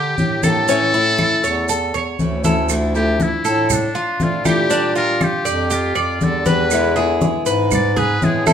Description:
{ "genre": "latin, Cuban son and guajira", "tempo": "119 BPM", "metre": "4/4", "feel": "straight", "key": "D minor", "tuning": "A4 = 440 Hz", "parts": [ { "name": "trumpet with metal mute", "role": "melody", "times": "0.0-8.5 s", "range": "D4 to D5", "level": "-21 LUFS", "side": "left 1 dB", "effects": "none" }, { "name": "Cuban tres", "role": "arpeggios", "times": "0.0-8.5 s", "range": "C#4 to D5", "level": "-20 LUFS", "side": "equal", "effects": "none" }, { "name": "warm bass clarinet", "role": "bass", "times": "0.0-8.5 s", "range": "D2 to D3", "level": "-22 LUFS", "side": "right 1 dB", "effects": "none" }, { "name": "picked old ladder-braced acoustic guitar", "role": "accompaniment", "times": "0.2-8.5 s", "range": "B2 to G4", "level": "-23 LUFS", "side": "left 3 dB", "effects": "none" }, { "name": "congas", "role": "percussion", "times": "0.2-8.5 s", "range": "none", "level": "-22 LUFS", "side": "left 1 dB", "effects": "none" }, { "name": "maracas", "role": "percussion", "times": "0.2-8.5 s", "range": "none", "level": "-29 LUFS", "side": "right 9 dB", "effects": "none" }, { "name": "claves", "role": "percussion", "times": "0.4-8.5 s", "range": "none", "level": "-29 LUFS", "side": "right 7 dB", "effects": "none" } ], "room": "moderate large studio reverb, RT60 1.1 s", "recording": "minimal, uncompressed stereo recording", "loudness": "-15 LUFS", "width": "side -8 dB against mid", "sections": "0.0-2.7 A section; 2.7-8.5 B section", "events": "muted trumpet solo 2.7-8.5", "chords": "0.0 Gm; 0.7 A; 2.7 Dmadd9; 4.7 Bb6; 6.7 E7", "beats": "0.18 | 0.68 1.19 1.69 2.19 | 2.70 3.20 3.70 4.20 | 4.71 5.21 5.71 6.21 | 6.71 7.22 7.72 8.22" }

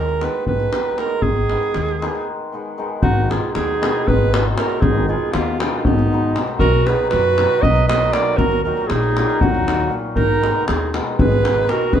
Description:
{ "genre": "balkan folk, Balkan wedding band", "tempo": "235 BPM (eighths)", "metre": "7/8", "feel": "straight", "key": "Ab minor", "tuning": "A4 = 440 Hz", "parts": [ { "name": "clear alto saxophone", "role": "melody", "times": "0.0-12.0 s", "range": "Eb4 to D#5", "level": "-20 LUFS", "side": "right 5 dB", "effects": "plate reverb" }, { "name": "hammered dulcimer", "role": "accompaniment", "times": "0.0-12.0 s", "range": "Bb2 to Eb4", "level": "-26 LUFS", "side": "left 3 dB", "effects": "none" }, { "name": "upright bass", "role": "bass", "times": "0.0-12.0 s", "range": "Ab1 to F#2", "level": "-21 LUFS", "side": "left 1 dB", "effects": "none" }, { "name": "davul", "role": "percussion", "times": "0.1-12.0 s", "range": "none", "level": "-21 LUFS", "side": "left 1 dB", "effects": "none" }, { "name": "warm clarinet", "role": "second line", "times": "3.0-12.0 s", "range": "Cb4 to B4", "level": "-25 LUFS", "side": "left 4 dB", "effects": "none" } ], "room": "moderate studio reverb, RT60 0.5 s", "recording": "dark, warm production", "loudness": "-15 LUFS", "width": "side -9 dB against mid", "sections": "0.0-3.0 A section; 3.0-12.0 B section", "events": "break 2.3-3.0", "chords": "0.0 Abm; 6.6 B; 8.4 Ebm; 10.2 Abm", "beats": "0.20 0.45 0.71 0.97 | 1.23 1.49 1.74 2.00 2.26 2.51 2.77 | 3.03 3.28 3.54 3.80 4.05 4.31 4.56 | 4.82 5.07 5.33 5.58 5.84 6.09 6.35 | 6.60 6.86 7.11 7.37 7.62 7.88 8.13 | 8.38 8.64 8.89 9.15 9.40 9.65 9.91 | 10.16 10.41 10.66 10.92 11.17 11.42 11.67 | 11.92" }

